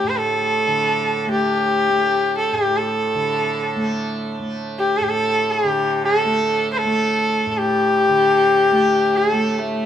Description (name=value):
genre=indian classical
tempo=free time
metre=none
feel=none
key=unclear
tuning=A4 = 438 Hz
part: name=rich sarangi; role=melody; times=0.0-9.9 s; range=A3 to C5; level=-17 LUFS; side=left 1 dB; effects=none
part: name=tanpura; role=drone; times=0.0-9.9 s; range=A2 to A3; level=-24 LUFS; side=right 1 dB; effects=none
room=wet studio ambience, RT60 0.5 s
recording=band playing live in one room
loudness=-16 LUFS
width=side -10 dB against mid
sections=0.0-9.9 A section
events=none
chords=none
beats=free time